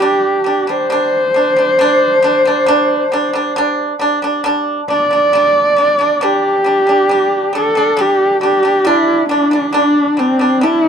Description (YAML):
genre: mongolian traditional, Mongolian folk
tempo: 68 BPM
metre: 4/4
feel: straight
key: G zhi mode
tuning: A4 = 439 Hz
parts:
  - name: warm horsehead fiddle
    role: melody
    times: 0.0-10.9 s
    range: C4 to D5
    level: -12 LUFS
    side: equal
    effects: tape echo
  - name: pipa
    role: arpeggios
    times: 0.0-10.9 s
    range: G3 to D4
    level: -16 LUFS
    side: right 2 dB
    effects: none
room: little or no reverb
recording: dry, close 1970s-style studio recording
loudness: -11 LUFS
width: side -7 dB against mid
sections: 0.0-8.9 A section; 8.9-10.9 B section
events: none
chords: 0.0 G5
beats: 0.01 0.90 | 1.79 2.67 3.56 4.45 | 5.33 6.21 7.09 7.97 | 8.85 9.73 10.61